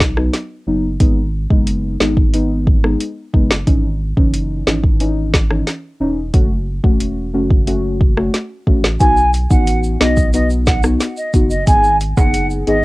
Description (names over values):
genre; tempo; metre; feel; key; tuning
dancehall; 90 BPM; 4/4; straight; unclear; A4 = 440 Hz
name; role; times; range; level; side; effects
deep mellow chord stab; accompaniment; 0.0-12.8 s; E3 to G#4; -19 LUFS; left 1 dB; chorus, cassette tape
saturated sub bass; bass; 0.0-12.8 s; E1 to B1; -20 LUFS; equal; none
afro-pop drum kit; drums; 0.0-12.8 s; hi-hat, kick drum, rim click, snare drum; -14 LUFS; equal; cassette tape
mellow hollow silver concert flute; melody; 9.0-12.8 s; D#5 to G#5; -17 LUFS; right 1 dB; cassette tape, analog delay
tube shaker and timbales; percussion; 9.0-12.7 s; none; -30 LUFS; right 4 dB; none
room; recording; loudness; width
little or no reverb; home recording on cassette; -13 LUFS; side -20 dB against mid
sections
0.0-9.0 A section; 9.0-12.8 B section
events
none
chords
0.0 B; 1.0 G#m; 3.7 C#madd9; 6.3 F#m; 9.0 B; 11.7 G#m